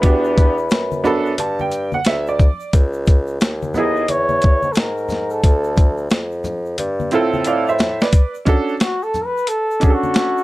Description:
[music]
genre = hip hop, jazz-hop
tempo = 89 BPM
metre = 4/4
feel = swing 63% on 16ths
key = B minor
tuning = A4 = 438 Hz
[part]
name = breathy flugelhorn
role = melody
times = 0.0-10.4 s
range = F#4 to D#5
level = -20 LUFS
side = left 1 dB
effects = none
[part]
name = bright upright piano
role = accompaniment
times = 0.0-10.4 s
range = B3 to B5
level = -19 LUFS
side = right 3 dB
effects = none
[part]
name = warm bassoon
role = bass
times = 0.0-8.1 s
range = C#2 to A2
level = -22 LUFS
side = equal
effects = none
[part]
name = boom bap sampler-style drum kit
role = drums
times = 0.0-10.4 s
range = hi-hat, kick drum, shaker, snare drum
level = -14 LUFS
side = equal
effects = none
[part]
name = tube shaker and congas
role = percussion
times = 0.0-10.4 s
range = none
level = -31 LUFS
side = left 4 dB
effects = none
[sound]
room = light reverb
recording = dark, warm production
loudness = -15 LUFS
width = side -18 dB against mid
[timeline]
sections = 0.0-8.1 A section; 8.1-10.4 B section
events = upright piano fill 0.7-2.7; drum fill 6.8-8.1; flugelhorn solo 8.1-10.4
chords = 0.0 Em9; 2.7 C#madd9; 5.4 Dm9; 8.1 Bm9/C# (rootless)

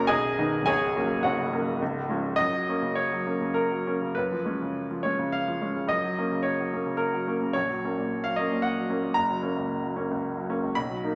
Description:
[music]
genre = classical, romantic character piece for solo piano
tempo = 100-115 BPM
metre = 3/4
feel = rubato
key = F# major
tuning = A4 = 435 Hz
[part]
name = clear grand piano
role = solo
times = 0.0-11.2 s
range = B0 to C#6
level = -27 LUFS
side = equal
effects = none
[sound]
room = wet large studio reverb, RT60 1.1 s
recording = none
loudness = -27 LUFS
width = mono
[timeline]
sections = 0.0-2.4 A section; 2.4-11.2 B section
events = none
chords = 0.1 G#m/B; 0.7 F#/C#; 1.8 C#; 2.4 F#; 4.1 C#7/F#; 5.9 F#; 7.5 F#/A#; 9.1 F#

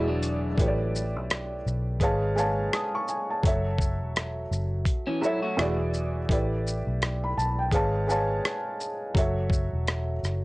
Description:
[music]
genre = lo-fi hip hop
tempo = 84 BPM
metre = 4/4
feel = swing 60% on 16ths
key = unclear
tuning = A4 = 439 Hz
[part]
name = electric guitar through a small old amp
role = second line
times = 0.0-0.6, 5.1-5.8 s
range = E3 to F#4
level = -32 LUFS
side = left 1 dB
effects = tape echo
[part]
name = felt-muted upright piano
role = accompaniment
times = 0.0-10.4 s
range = E3 to D#6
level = -28 LUFS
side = right 1 dB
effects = cassette tape
[part]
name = vintage muted fingered electric bass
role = bass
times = 0.0-10.4 s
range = E1 to B1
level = -29 LUFS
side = equal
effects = tube saturation
[part]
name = dusty soul sampler-style drum kit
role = drums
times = 0.2-10.4 s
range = hi-hat, kick drum, rim click, shaker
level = -27 LUFS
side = equal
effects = none
[sound]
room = little or no reverb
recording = dry, gritty hardware recording, cassette tape, nothing above 10.4 kHz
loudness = -24 LUFS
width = side -22 dB against mid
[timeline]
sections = 0.0-10.4 A section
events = none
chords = 0.0 E7; 0.6 A9sus4; 2.0 C#7b13/G#; 3.4 F#m7; 5.6 E7; 6.3 A9sus4; 7.7 C#7b13/G#; 9.1 F#m7

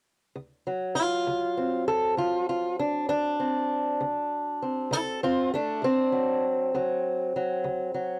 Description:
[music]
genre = acoustic country blues, solo or duo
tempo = 66 BPM (dotted quarters)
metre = 12/8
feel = straight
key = D mixolydian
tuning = A4 = 440 Hz
[part]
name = fingerpicked acoustic archtop guitar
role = solo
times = 0.4-8.2 s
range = D2 to A4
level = -27 LUFS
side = equal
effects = cassette tape
[sound]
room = light reverb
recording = home recording on cassette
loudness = -27 LUFS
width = mono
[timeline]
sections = 0.3-8.2 A section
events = none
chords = 0.3 D7

